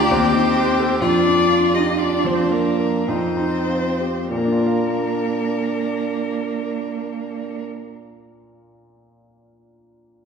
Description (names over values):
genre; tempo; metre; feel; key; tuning
classical, slow romantic movement for piano quartet; 47-69 BPM; 3/4; rubato; Bb major; A4 = 439 Hz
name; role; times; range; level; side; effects
rich violin; melody; 0.0-7.6 s; Bb4 to Eb5; -25 LUFS; left 4 dB; none
rich cello; second line; 0.0-7.6 s; Bb3 to Eb4; -24 LUFS; right 4 dB; none
rich violin; second line; 0.0-7.6 s; D4 to G4; -24 LUFS; right 1 dB; none
clear concert grand piano; accompaniment; 0.0-10.2 s; D2 to F5; -22 LUFS; left 1 dB; none
room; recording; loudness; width
wet scoring stage reverb, RT60 1.8 s; heard from further back in the room; -17 LUFS; side -6 dB against mid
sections
0.0-4.3 A section; 4.3-7.8 B section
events
slowing down 0.0-4.3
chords
0.1 Cm/Eb; 1.0 Bb/F; 3.1 F5; 4.3 Bb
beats
0.11 | 1.01 1.98 3.07 | 4.30 5.50 6.67